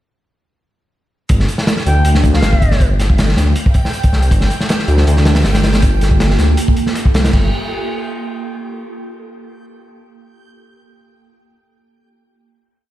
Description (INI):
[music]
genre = drum and bass, jungle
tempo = 159 BPM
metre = 4/4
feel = swing 53% on 16ths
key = G minor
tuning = A4 = 440 Hz
[part]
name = dark detuned saw bass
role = bass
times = 1.3-7.5 s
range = G1 to D2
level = -13 LUFS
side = equal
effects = tube saturation
[part]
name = crunchy breakbeat drum kit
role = drums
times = 1.3-7.4 s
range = crash cymbal, hi-hat, kick drum, snare drum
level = -14 LUFS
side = equal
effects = none
[part]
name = backwards swelling texture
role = texture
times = 2.0-7.3 s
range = G5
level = -30 LUFS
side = right 2 dB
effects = built-in reverb
[part]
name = bright reedy silver concert flute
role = melody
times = 1.9-2.9 s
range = F5 to G5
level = -24 LUFS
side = equal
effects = dub echo
[part]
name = ethereal airy pad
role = sustained chords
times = 5.6-7.5 s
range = Bb3 to A4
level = -24 LUFS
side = right 3 dB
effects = ensemble chorus, built-in reverb, phaser, vintage 12-bit sampler grit
[part]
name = dusty soul sampler-style drum kit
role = drums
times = 4.3-7.2 s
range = hi-hat, snare drum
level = -32 LUFS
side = left 2 dB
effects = none
[sound]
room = light reverb, small room ambience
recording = played on a big sound system in a bare room, stone room reverb, lossy compression artefacts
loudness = -11 LUFS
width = side -14 dB against mid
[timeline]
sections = 1.3-7.3 drop; 7.3-8.8 final chord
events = drop 1.3-7.3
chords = 1.3 Gm9